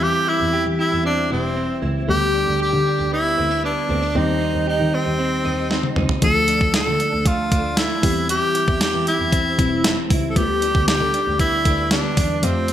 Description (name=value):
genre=1980s-style pop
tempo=116 BPM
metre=4/4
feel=straight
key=G mixolydian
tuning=A4 = 440 Hz
part: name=breathy tenor saxophone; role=melody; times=0.0-12.7 s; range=C4 to A4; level=-20 LUFS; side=equal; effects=none
part: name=tine electric piano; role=accompaniment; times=0.0-12.7 s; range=D3 to A4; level=-25 LUFS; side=left 3 dB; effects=phaser
part: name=direct-recorded clean electric guitar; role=riff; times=0.0-12.7 s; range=E3 to A4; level=-28 LUFS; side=right 3 dB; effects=ensemble chorus
part: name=rich double bass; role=bass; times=0.0-12.5 s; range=E1 to E3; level=-25 LUFS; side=equal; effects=none
part: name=clean 12-bit digital drum machine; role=drums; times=5.7-12.7 s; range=hi-hat, kick drum, snare drum, toms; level=-21 LUFS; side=equal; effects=overdrive
room=moderate plate reverb, RT60 1.6 s, digital ambience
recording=bright 1980s-style digital production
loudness=-17 LUFS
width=side -11 dB against mid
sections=0.0-12.7 A section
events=drum fill 5.7-6.2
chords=0.0 C/E; 2.1 G/D; 4.2 Cm/Eb; 6.2 Dm; 8.0 C/E; 10.4 G/D